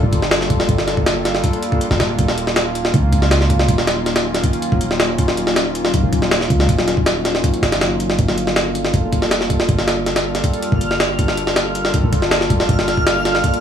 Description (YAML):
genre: drum and bass, jungle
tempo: 160 BPM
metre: 4/4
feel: straight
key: unclear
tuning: A4 = 440 Hz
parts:
  - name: warbly tape-like pad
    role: sustained chords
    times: 0.0-13.6 s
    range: Eb3 to A4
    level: -21 LUFS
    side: equal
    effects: chorus, built-in reverb, vintage 12-bit sampler grit
  - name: warm 808-style bass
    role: bass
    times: 0.0-13.4 s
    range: D1 to Db2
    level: -22 LUFS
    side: equal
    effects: none
  - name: jungle sampler-style drum kit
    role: drums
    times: 0.1-13.6 s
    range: hi-hat, kick drum, snare drum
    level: -17 LUFS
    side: equal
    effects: small room reverb
  - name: backwards swelling texture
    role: texture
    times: 10.4-13.6 s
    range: F6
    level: -25 LUFS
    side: equal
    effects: built-in reverb
room: light reverb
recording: vinyl crackle, small room ambience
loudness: -14 LUFS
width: side -8 dB against mid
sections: 0.0-13.6 A section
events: none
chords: 0.0 Gm7; 2.2 Ebm7; 8.2 Gm7